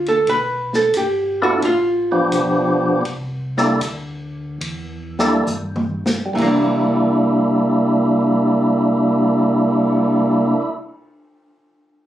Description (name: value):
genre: soul jazz organ trio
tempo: 63-90 BPM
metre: 4/4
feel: swing 69% on 8ths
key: C mixolydian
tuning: A4 = 440 Hz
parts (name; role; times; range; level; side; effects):
- archtop guitar, miked and amplified; accompaniment; 0.0-10.7 s; E3 to B4; -19 LUFS; right 1 dB; none
- mellow tonewheel organ; bass; 0.0-10.5 s; G1 to G2; -29 LUFS; equal; slow rotary speaker
- vintage drum kit; drums; 0.1-10.0 s; crash cymbal, cymbal swell, hi-hat, kick drum, ride cymbal, snare drum, toms; -28 LUFS; equal; none
- percussive tonewheel organ; melody; 1.4-10.7 s; F3 to A4; -15 LUFS; equal; slow rotary speaker
room: moderate studio reverb, RT60 0.5 s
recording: recorded on a phone in the room, club reverb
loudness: -15 LUFS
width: side -12 dB against mid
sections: 0.0-6.4 A section; 6.4-10.2 B section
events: hollow-body jazz guitar solo 0.0-6.4; slowing down 0.3-6.4; drum fill 5.5-6.4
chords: 0.0 G9; 3.1 C13; 6.4 C9